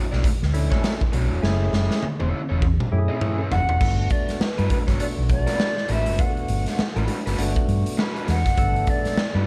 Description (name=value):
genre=funk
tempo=101 BPM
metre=4/4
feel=swing 60% on 16ths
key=unclear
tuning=A4 = 437 Hz
part: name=raw garage guitar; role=accompaniment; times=0.0-9.5 s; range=A3 to E5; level=-33 LUFS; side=equal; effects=overdrive
part: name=hollow-body short-scale fingered electric bass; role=bass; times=0.1-9.4 s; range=E1 to G2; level=-25 LUFS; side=equal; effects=none
part: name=raw garage drum kit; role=drums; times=0.1-9.3 s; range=crash cymbal, hi-hat, kick drum, snare drum, toms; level=-26 LUFS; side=equal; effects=none
part: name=percussive tonewheel organ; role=stabs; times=0.5-9.2 s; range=A3 to A4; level=-32 LUFS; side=equal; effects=overdrive, slow rotary speaker
part: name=breathy mellow jazz flute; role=melody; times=3.5-9.5 s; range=B4 to F#5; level=-29 LUFS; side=equal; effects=slapback echo
room=light reverb, small room ambience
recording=dark, warm production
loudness=-22 LUFS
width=mono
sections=0.0-3.8 A section; 3.8-9.5 B section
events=drum fill 1.4-3.8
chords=0.0 Bm9; 1.4 F#m7; 3.8 Gmaj9